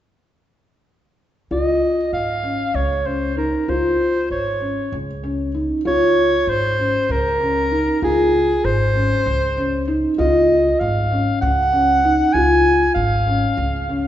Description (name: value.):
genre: contemporary instrumental, chamber music in an uneven meter.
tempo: 194 BPM (eighths).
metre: 7/8.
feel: straight.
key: Db major.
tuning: A4 = 441 Hz.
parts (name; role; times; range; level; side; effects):
breathy soprano saxophone; melody; 1.5-14.1 s; Ab4 to Ab5; -19 LUFS; right 1 dB; none.
felt-muted upright piano; arpeggios; 1.5-14.1 s; Db4 to F4; -20 LUFS; left 2 dB; none.
upright bass; bass; 1.5-14.1 s; Ab1 to Db2; -24 LUFS; right 1 dB; none.
room: wet recital hall reverb, RT60 1.8 s.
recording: recorded in a church or concert hall, nothing above 7.9 kHz.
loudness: -16 LUFS.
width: side -11 dB against mid.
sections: 1.5-5.9 A section; 5.9-14.1 B section.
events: none.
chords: 1.5 Dbmaj7.